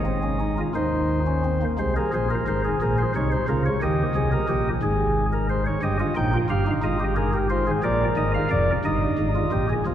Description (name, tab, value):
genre	classical, baroque-style 3-part fugue for pipe organ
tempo	59 BPM (dotted quarters)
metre	6/8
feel	straight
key	Ab major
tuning	A4 = 440 Hz
part	chamber organ, flutes	solo	0.0-9.9 s	F1 to G5	-21 LUFS	equal	none
room	wet cathedral reverb, RT60 5.0 s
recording	heard from further back in the room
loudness	-21 LUFS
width	side -10 dB against mid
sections	0.0-1.8 A section; 1.8-9.9 B section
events	none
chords	0.0 Ab; 0.7 Eb5; 1.8 Ab; 2.8 Bbm7; 3.8 Eb; 4.8 Ab; 5.8 Eb/G; 6.8 Fm7/Ab; 7.8 Bb7; 8.8 Eb/G